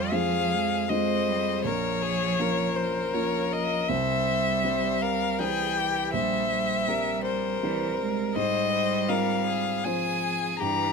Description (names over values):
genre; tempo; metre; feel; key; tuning
classical, slow romantic movement for piano quartet; 80 BPM; 3/4; rubato; F minor; A4 = 440 Hz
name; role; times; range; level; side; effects
rich violin; melody; 0.0-10.9 s; C5 to Bb5; -27 LUFS; left 4 dB; none
clear violin; second line; 0.0-10.9 s; F4 to C5; -32 LUFS; left 4 dB; none
rich cello; second line; 0.0-10.9 s; E3 to Ab3; -31 LUFS; right 6 dB; none
dark baby grand piano; accompaniment; 0.0-10.9 s; Bb1 to C5; -30 LUFS; right 1 dB; none
room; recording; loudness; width
light reverb; close, detailed microphones; -24 LUFS; side -5 dB against mid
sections
0.0-10.9 A section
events
none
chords
0.0 Fm; 1.6 Bbm; 3.9 C; 6.1 C7/Bb; 8.3 Fm/Ab